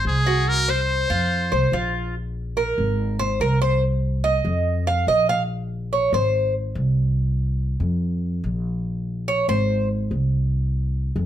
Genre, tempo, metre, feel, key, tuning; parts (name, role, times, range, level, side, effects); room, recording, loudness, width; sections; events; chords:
latin, Cuban son and guajira; 143 BPM; 4/4; straight; A4 = 441 Hz
trumpet with metal mute; melody; 0.0-1.9 s; Ab4 to C5; -23 LUFS; left 1 dB; slapback echo
Cuban tres; arpeggios; 0.0-6.5, 9.3-9.9 s; F4 to F5; -22 LUFS; right 1 dB
upright bass; bass; 0.0-11.3 s; Ab1 to F2; -22 LUFS; equal
light reverb; -20 LUFS; side -11 dB against mid
0.0-2.2 A section; 2.2-11.3 B section
Cuban tres solo 2.2-11.3
0.5 Gbmaj7#11/C; 1.3 F5; 2.2 Absus2; 3.0 Ab; 3.8 Cmadd11; 4.7 Bbsus4; 5.5 Abadd9; 6.3 Ab; 7.2 Csus4; 8.0 Bb5; 8.9 Abadd9; 9.7 Ab; 10.5 Csus4